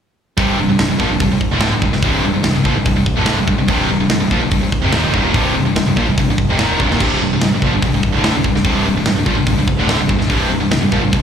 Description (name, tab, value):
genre	heavy metal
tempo	145 BPM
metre	4/4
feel	straight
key	C minor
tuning	A4 = 440 Hz
part	cranked stack guitar	riff	0.4-11.2 s	C2 to F3	-21 LUFS	left 1 dB	overdrive, slapback echo
part	scooped high-gain guitar	riff	0.4-11.2 s	C2 to F3	-19 LUFS	left 8 dB	distortion
part	tight distorted guitar	riff	0.4-11.2 s	C2 to F3	-19 LUFS	right 9 dB	distortion, slapback echo
part	fuzz picked electric bass	bass	0.4-11.2 s	C1 to Bb1	-21 LUFS	equal	overdrive
part	tight metal drum kit	drums	0.4-11.2 s	crash cymbal, hi-hat, kick drum, snare drum	-19 LUFS	equal	none
room	small room ambience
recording	live gig heard through the venue's PA, club reverb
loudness	-13 LUFS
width	side -8 dB against mid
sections	0.4-11.2 A section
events	none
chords	0.4 Cm